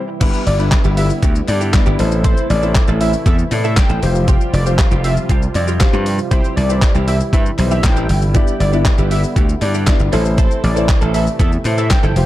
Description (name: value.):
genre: dance-pop.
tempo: 118 BPM.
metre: 4/4.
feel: straight.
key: unclear.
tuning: A4 = 440 Hz.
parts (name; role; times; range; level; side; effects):
dark baby grand piano; accompaniment; 0.0-12.3 s; G3 to G5; -24 LUFS; left 4 dB; sidechain pumping.
warm analog pad; sustained chords; 0.0-12.3 s; C3 to F4; -25 LUFS; right 1 dB; chorus, sidechain pumping.
direct-recorded clean electric guitar; riff; 0.1-12.2 s; B3 to A4; -26 LUFS; right 4 dB; ensemble chorus.
slap bass; bass; 0.2-12.3 s; F1 to A2; -16 LUFS; equal; sidechain pumping.
detuned 8-bit digital drum machine; drums; 0.2-12.3 s; crash cymbal, handclaps, hi-hat, kick drum, shaker, snare drum; -16 LUFS; equal; none.
fat analog lead; melody; 0.5-12.3 s; C5 to G5; -24 LUFS; equal; sidechain pumping, dub echo.
group handclap; percussion; 0.7-12.0 s; none; -34 LUFS; left 5 dB; none.
room: little or no reverb.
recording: dark, warm production.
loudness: -12 LUFS.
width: side -15 dB against mid.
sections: 0.2-12.3 A section.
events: break 0.0; grand piano fill 0.0; drop 0.2-12.3.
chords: 0.2 G6; 2.0 Am; 4.0 Fsus2; 6.3 C; 8.3 G6; 10.1 Am.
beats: | 0.21 0.72 1.23 1.74 | 2.25 2.75 3.26 3.77 | 4.28 4.79 5.29 5.80 | 6.31 6.82 7.33 7.84 | 8.35 8.86 9.36 9.87 | 10.38 10.89 11.40 11.91.